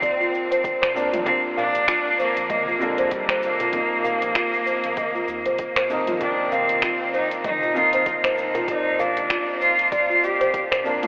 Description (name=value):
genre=organic downtempo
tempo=97 BPM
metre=4/4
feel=swing 57% on 16ths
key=unclear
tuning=A4 = 440 Hz
part: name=bright cello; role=melody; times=0.0-10.5 s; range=G3 to G4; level=-25 LUFS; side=equal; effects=analog delay
part: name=felt-muted upright piano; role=accompaniment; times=0.0-11.1 s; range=C3 to D5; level=-31 LUFS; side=equal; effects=sidechain pumping, analog delay
part: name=folk marimba with soft mallets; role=arpeggios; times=0.0-11.1 s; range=F4 to F5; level=-27 LUFS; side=equal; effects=analog delay
part: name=round analog bass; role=bass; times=0.0-11.1 s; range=Eb1 to Eb2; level=-52 LUFS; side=equal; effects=none
part: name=deep house drum kit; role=drums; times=0.0-11.1 s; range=finger snaps, hi-hat, shaker, toms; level=-32 LUFS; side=equal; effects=none
part: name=electronic kick drum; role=drums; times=0.0-10.7 s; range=none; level=-37 LUFS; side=equal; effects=none
part: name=darbuka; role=percussion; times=0.2-10.8 s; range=none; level=-42 LUFS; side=equal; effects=none
room=wet huge ambient reverb, RT60 7.8 s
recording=dreamy mix soaked in reverb, telephone sound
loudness=-22 LUFS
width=mono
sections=0.0-11.1 A section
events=none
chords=0.0 Gm7 (rootless); 3.7 Bb7sus4; 6.2 F5; 8.7 Gm7 (rootless)